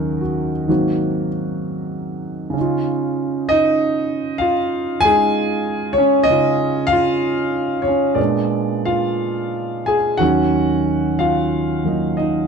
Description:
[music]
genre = solo jazz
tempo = 58-65 BPM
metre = 4/4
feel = swing 67% on 8ths, rubato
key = Db major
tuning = A4 = 440 Hz
[part]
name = warm concert grand piano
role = solo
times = 0.0-12.5 s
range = Eb2 to Ab5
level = -16 LUFS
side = right 1 dB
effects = none
[sound]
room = light reverb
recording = close, detailed microphones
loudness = -16 LUFS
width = side -6 dB against mid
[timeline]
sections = 0.0-10.2 A section; 10.2-12.5 B section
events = none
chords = 0.0 Ebm7; 0.7 Ab9; 2.6 Dbadd9; 8.2 Bb7b9; 10.2 Ebm7

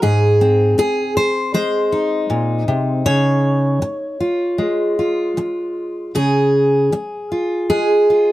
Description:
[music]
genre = folk, solo fingerstyle acoustic guitar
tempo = 78 BPM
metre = 4/4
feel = rubato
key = Db major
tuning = A4 = 441 Hz
[part]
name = fingerpicked steel-string acoustic guitar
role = solo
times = 0.0-8.3 s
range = Ab2 to Db5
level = -15 LUFS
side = equal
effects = none
[sound]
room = little or no reverb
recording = close, detailed microphones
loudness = -15 LUFS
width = side -16 dB against mid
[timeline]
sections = 0.0-6.2 A section; 6.2-8.3 A section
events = none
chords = 0.0 Ab; 3.1 Dbadd9; 6.2 Db

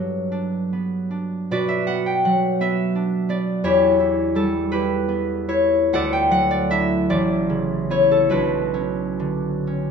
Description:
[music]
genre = classical, solo harp piece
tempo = 41-58 BPM (dotted quarters)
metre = 6/8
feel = rubato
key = B minor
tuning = A4 = 440 Hz
[part]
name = concert harp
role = solo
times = 0.0-9.9 s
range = A1 to G5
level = -18 LUFS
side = equal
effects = none
[sound]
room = moderate stone room reverb, RT60 1.1 s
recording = dark, warm production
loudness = -18 LUFS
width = side -6 dB against mid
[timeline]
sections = 0.0-9.9 A section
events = none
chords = 0.0 Gmaj7; 1.5 Bm; 3.6 Em6; 5.9 Dadd9; 7.1 Aadd9; 8.3 Bmadd9

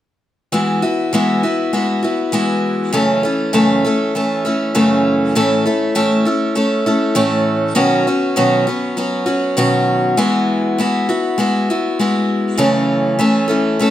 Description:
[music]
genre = folk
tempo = 100 BPM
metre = 4/4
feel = straight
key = E major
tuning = A4 = 439 Hz
[part]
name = picked steel-string acoustic guitar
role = accompaniment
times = 0.5-13.9 s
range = F#2 to A4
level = -14 LUFS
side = equal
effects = none
[sound]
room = light reverb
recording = close, detailed microphones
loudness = -14 LUFS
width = side -12 dB against mid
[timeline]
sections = 0.5-10.2 A section; 10.2-13.9 B section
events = none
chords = 0.5 Eadd9; 2.9 F#m7; 5.4 A; 7.8 Badd9; 10.2 Eadd9; 12.6 F#m7

